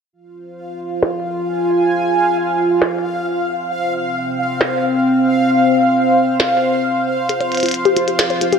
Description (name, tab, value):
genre	IDM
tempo	134 BPM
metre	4/4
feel	straight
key	F minor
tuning	A4 = 438 Hz
part	warm analog pad	sustained chords	0.1-8.6 s	C4 to Ab5	-16 LUFS	right 1 dB	chorus
part	bubbling stepped-filter texture	texture	0.7-8.6 s	F5	-22 LUFS	equal	chorus, built-in reverb
part	glitchy drum kit	drums	1.0-8.6 s	hi-hat, snare drum	-20 LUFS	equal	low-pass filter on snare, low-pass filter on hats, tape echo
part	warbly dusty pluck	arpeggios	7.3-8.6 s	F4 to C5	-17 LUFS	left 5 dB	chorus, ping-pong delay
room	moderate plate reverb, RT60 2.0 s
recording	none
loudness	-14 LUFS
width	side -6 dB against mid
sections	0.1-8.6 A section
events	filter sweep on drum 0.1-8.6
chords	0.1 Fm; 3.7 Csus4; 7.3 Fsus2